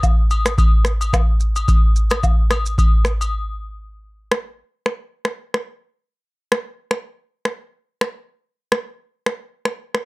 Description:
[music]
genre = afrobeats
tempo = 109 BPM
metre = 4/4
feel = swing 55% on 16ths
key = none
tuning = none
[part]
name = booming analog drum machine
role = drums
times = 0.0-10.1 s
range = finger snaps, kick drum, rim click, shaker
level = -16 LUFS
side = equal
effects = none
[part]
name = woodblock and agogo bells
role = percussion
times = 0.0-3.3 s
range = none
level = -26 LUFS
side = left 4 dB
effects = none
[sound]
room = little or no reverb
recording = dark, warm production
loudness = -18 LUFS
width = side -23 dB against mid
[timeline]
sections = 0.0-3.9 A section; 3.9-10.1 B section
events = break 3.3-3.9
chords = none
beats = 0.03 0.58 1.13 | 1.68 2.23 2.78 3.33 | 3.88 4.43 4.99 5.54 | 6.09 6.64 7.19 7.74 | 8.29 8.84 9.39 9.94

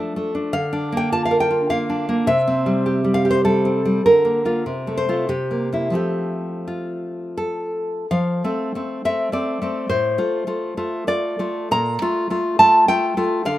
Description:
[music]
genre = romantic piece for solo classical guitar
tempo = 76-109 BPM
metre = 3/4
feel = rubato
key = F major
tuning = A4 = 440 Hz
[part]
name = nylon-string guitar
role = solo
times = 0.0-13.6 s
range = A2 to Bb5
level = -18 LUFS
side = equal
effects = none
[sound]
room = moderate plate reverb, RT60 3.0 s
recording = rough home demo mix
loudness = -18 LUFS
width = side -14 dB against mid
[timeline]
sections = 0.0-8.1 A section; 8.1-13.6 B section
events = none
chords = 0.0 Dm/F; 0.5 Bb/D; 2.3 C; 4.0 Bb/D; 4.6 F/C; 5.3 C7; 5.9 F; 9.9 F/A; 11.7 Bb5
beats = | 0.54 1.12 1.70 | 2.28 2.86 3.44 | 4.04 4.65 5.27 | 5.94 6.66 7.36 | 8.10 8.73 9.32 | 9.89 10.47 11.07 | 11.71 12.30 12.88 | 13.46

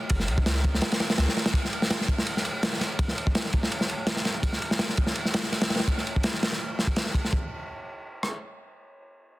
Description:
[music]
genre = drum and bass, jungle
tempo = 166 BPM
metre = 4/4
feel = swing 54% on 16ths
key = unclear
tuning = A4 = 440 Hz
[part]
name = soft dub sub bass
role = bass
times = 0.1-1.3 s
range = F#1 to C#2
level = -26 LUFS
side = equal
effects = none
[part]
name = crunchy breakbeat drum kit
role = drums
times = 0.1-8.3 s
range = kick drum, ride cymbal, rim click, snare drum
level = -24 LUFS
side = equal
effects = none
[sound]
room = little or no reverb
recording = dense, heavily limited modern master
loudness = -24 LUFS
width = side -18 dB against mid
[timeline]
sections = 0.0-7.3 A section; 7.3-9.4 B section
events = none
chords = none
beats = | 0.10 0.46 0.82 1.18 | 1.54 1.90 2.27 2.63 | 2.99 3.35 3.71 4.07 | 4.43 4.80 5.16 5.52 | 5.88 6.24 6.60 6.96 | 7.33 7.69 8.05

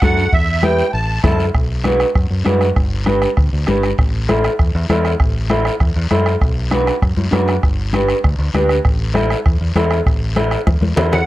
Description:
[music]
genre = latin, cumbia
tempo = 197 BPM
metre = 4/4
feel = straight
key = A dorian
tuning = A4 = 439 Hz
[part]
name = musette accordion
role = melody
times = 0.0-1.5, 11.1-11.3 s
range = E5 to A5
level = -20 LUFS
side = right 2 dB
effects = none
[part]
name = electric guitar through a small old amp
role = accompaniment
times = 0.0-11.2 s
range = D4 to C5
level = -18 LUFS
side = equal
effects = spring reverb
[part]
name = fingered electric bass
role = bass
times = 0.0-11.2 s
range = G1 to F#2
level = -18 LUFS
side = equal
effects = none
[part]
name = bombo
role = percussion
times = 0.0-11.3 s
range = none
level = -18 LUFS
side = equal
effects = none
[part]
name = congas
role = percussion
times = 0.0-11.2 s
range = none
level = -22 LUFS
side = left 3 dB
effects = none
[part]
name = guiro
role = percussion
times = 0.0-11.3 s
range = none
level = -32 LUFS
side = left 5 dB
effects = none
[sound]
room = moderate studio reverb, RT60 0.5 s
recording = cassette tape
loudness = -14 LUFS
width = side -16 dB against mid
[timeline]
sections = 0.0-1.5 A section; 1.5-11.3 B section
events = drum fill 10.7-11.3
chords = 0.3 Em; 0.9 Am; 1.5 Bm; 2.8 G; 4.0 Am; 6.4 Bm; 7.6 G; 8.8 Am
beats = 0.02 | 0.32 0.63 0.93 1.24 | 1.54 1.85 2.15 2.46 | 2.76 3.06 3.37 3.67 | 3.98 4.28 4.59 4.89 | 5.20 5.50 5.81 6.11 | 6.42 6.72 7.02 7.33 | 7.63 7.94 8.24 8.54 | 8.85 9.15 9.46 9.76 | 10.07 10.37 10.67 10.98

